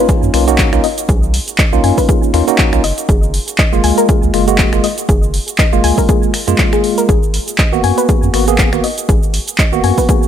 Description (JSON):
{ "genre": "deep house", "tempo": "120 BPM", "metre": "4/4", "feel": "swing 56% on 16ths", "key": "unclear", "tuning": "A4 = 440 Hz", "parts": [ { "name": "soft round pluck", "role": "arpeggios", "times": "0.0-10.1 s", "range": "G#4 to G#5", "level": "-20 LUFS", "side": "left 5 dB", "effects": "chorus, sidechain pumping, tape echo" }, { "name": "bell-like tine electric piano", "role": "stabs", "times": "0.0-10.3 s", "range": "G#3 to G#4", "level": "-16 LUFS", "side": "right 1 dB", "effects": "medium stereo tremolo, vintage 12-bit sampler grit, sidechain pumping, digital delay" }, { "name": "impact", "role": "sound effects", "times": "0.0-1.1 s", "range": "none", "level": "-34 LUFS", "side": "equal", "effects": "none" }, { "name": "electronic kick drum", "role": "drums", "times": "0.1-10.2 s", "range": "none", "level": "-13 LUFS", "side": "equal", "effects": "overdrive" }, { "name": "punchy analog drum machine", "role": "drums", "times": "0.1-10.3 s", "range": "finger snaps, handclaps, hi-hat, shaker", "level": "-19 LUFS", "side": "right 2 dB", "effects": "overdrive" }, { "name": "warm sub bass", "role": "bass", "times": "0.2-9.9 s", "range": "F#1 to F#2", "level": "-16 LUFS", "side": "equal", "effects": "sidechain pumping" } ], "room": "digital ambience", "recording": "none", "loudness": "-10 LUFS", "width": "side -9 dB against mid", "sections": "0.0-10.3 A section", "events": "impact 0.0-1.1", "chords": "0.0 Bmaj9#11; 2.8 F#maj9; 7.1 G#m9", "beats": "0.09 0.59 | 1.09 1.59 2.09 2.59 | 3.09 3.59 4.09 4.59 | 5.09 5.59 6.09 6.59 | 7.09 7.59 8.09 8.59 | 9.09 9.59 10.09" }